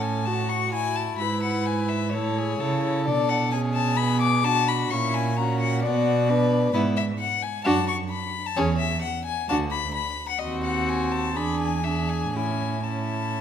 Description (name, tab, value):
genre	quick classical-period movement for string quartet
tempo	129 BPM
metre	4/4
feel	rubato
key	A major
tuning	A4 = 440 Hz
part	rich violin	melody	0.0-13.4 s	B4 to D6	-27 LUFS	left 8 dB	none
part	warm violin	second line	0.0-13.4 s	E4 to B4	-30 LUFS	left 2 dB	none
part	warm viola	accompaniment	0.0-13.4 s	B3 to F#4	-30 LUFS	right 3 dB	none
part	rich cello	bass	0.0-13.4 s	D2 to C#3	-26 LUFS	right 4 dB	none
room	moderate recital hall reverb, RT60 1.7 s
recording	none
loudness	-22 LUFS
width	side -9 dB against mid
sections	0.0-13.4 A section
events	none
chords	0.0 A; 1.2 E/G#; 2.1 A; 3.1 Bm; 4.9 F#7/A#; 5.8 Bm; 6.7 E/G#; 7.7 D/F#; 8.6 C#m/E; 9.5 D6; 10.4 D#dim7; 11.4 E7; 12.3 A